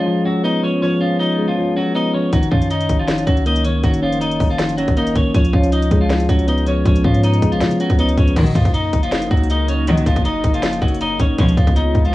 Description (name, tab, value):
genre	hip hop, trap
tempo	159 BPM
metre	4/4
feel	half-time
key	F# major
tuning	A4 = 441 Hz
part	clean electric guitar	melody	0.0-12.1 s	E#3 to D#5	-22 LUFS	left 2 dB	low-pass filter, cassette tape, analog delay
part	soft electric-piano-like synth keys	accompaniment	0.0-8.4 s	D#3 to C#4	-18 LUFS	equal	chorus, low-pass filter, cassette tape
part	clean 808-style bass	bass	2.3-12.1 s	F#1 to C#3	-19 LUFS	equal	none
part	trap drum kit	drums	2.3-12.1 s	crash cymbal, hi-hat, kick drum, snare drum	-18 LUFS	equal	cassette tape
part	airy breathy pad	sustained chords	8.4-12.1 s	C#3 to E#4	-23 LUFS	equal	chorus, cassette tape
part	warm studio string section	stabs	8.4-11.5 s	A#1 to E#3	-18 LUFS	left 1 dB	cassette tape
room	little or no reverb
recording	home recording on cassette, vinyl crackle, small room ambience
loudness	-14 LUFS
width	side -17 dB against mid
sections	0.0-8.4 A section; 8.4-12.1 B section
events	none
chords	0.0 C#7; 2.3 F#6; 5.3 C#7; 8.4 F#6; 11.4 C#7